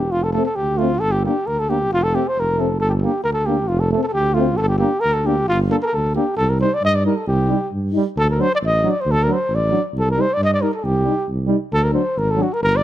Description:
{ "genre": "balkan folk, Balkan brass band", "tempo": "135 BPM", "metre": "2/4", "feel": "straight", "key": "G minor", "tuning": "A4 = 440 Hz", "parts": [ { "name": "breathy trumpet", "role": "melody", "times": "0.0-12.8 s", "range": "F4 to Eb5", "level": "-19 LUFS", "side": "equal", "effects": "none" }, { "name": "mellow tuba", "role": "bass", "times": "0.0-12.8 s", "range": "E1 to G2", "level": "-21 LUFS", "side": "equal", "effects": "none" }, { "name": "warm trombone", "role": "accompaniment", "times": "0.3-12.5 s", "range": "F#3 to Bb3", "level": "-26 LUFS", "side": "right 7 dB", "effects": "none" }, { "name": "mellow euphonium", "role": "accompaniment", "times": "0.4-12.5 s", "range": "C4 to Eb4", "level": "-24 LUFS", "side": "left 7 dB", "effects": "none" } ], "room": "little or no reverb", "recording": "close, detailed microphones", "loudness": "-16 LUFS", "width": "side -12 dB against mid", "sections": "0.0-6.4 A section; 6.4-12.8 B section", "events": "none", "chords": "0.1 F; 1.0 Gm; 1.9 F; 2.8 Gm; 3.7 F; 4.6 Gm; 6.4 Cm; 8.2 D; 9.9 Cm; 11.7 D" }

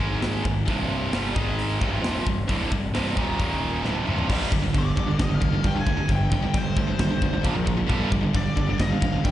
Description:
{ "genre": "heavy metal", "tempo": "133 BPM", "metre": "4/4", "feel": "straight", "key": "unclear", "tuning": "A4 = 442 Hz", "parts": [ { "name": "distorted electric guitar", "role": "riff", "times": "0.0-9.3 s", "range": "C2 to Bb3", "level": "-26 LUFS", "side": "right 5 dB", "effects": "overdrive" }, { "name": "heavy high-gain guitar", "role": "riff", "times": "0.0-9.3 s", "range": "C2 to Bb3", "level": "-31 LUFS", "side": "left 10 dB", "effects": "distortion, slapback echo" }, { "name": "fuzz picked electric bass", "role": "bass", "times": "0.0-9.3 s", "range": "C1 to G2", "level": "-28 LUFS", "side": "left 1 dB", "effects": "overdrive" }, { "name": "tight metal drum kit", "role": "drums", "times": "0.0-9.3 s", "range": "china cymbal, crash cymbal, hi-hat, kick drum, snare drum, toms", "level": "-26 LUFS", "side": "equal", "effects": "none" }, { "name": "nasal lead guitar with a parked wah", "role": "melody", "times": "4.8-9.3 s", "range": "C5 to Ab5", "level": "-32 LUFS", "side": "left 3 dB", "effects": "overdrive, slapback echo, ping-pong delay" } ], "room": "small room ambience", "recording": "live gig heard through the venue's PA, recital hall reverb, nothing above 10.6 kHz", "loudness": "-21 LUFS", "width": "side -13 dB against mid", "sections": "0.0-4.3 A section; 4.3-9.3 B section", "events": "drum fill 3.8-4.3; half time 4.3-9.3", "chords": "0.0 Ab5; 0.7 C5; 1.4 Ab5; 1.8 Cm; 3.4 Eb5; 3.8 C5; 4.3 G5; 7.4 Bb5; 7.9 G5" }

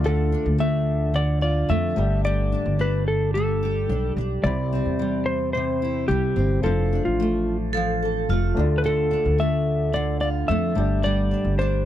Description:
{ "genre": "acoustic pop", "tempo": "109 BPM", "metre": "4/4", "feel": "straight", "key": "unclear", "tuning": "A4 = 440 Hz", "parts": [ { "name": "dark upright piano", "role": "accompaniment", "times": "0.0-11.9 s", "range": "G3 to B5", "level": "-32 LUFS", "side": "left 6 dB", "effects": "none" }, { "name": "fingerpicked steel-string acoustic guitar", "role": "accompaniment", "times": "0.0-11.9 s", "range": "C3 to A4", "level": "-26 LUFS", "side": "right 1 dB", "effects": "double-tracked left and right" }, { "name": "upright bass", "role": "bass", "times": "0.0-11.9 s", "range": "F1 to F2", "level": "-24 LUFS", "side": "equal", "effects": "none" }, { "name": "clean lap steel guitar", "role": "melody", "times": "0.1-11.9 s", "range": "F4 to E5", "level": "-26 LUFS", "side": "left 1 dB", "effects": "none" }, { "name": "vibraphone with medium hard mallets", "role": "second line", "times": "7.7-8.6 s", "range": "F4 to A4", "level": "-27 LUFS", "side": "right 3 dB", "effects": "none" } ], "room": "light reverb", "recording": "dry, close 1970s-style studio recording", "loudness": "-20 LUFS", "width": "side -12 dB against mid", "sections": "0.0-11.9 A section", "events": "none", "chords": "0.0 Dm; 2.0 Gsus2; 4.4 Cmaj7; 6.6 F6; 8.6 Dm; 10.8 Gsus2" }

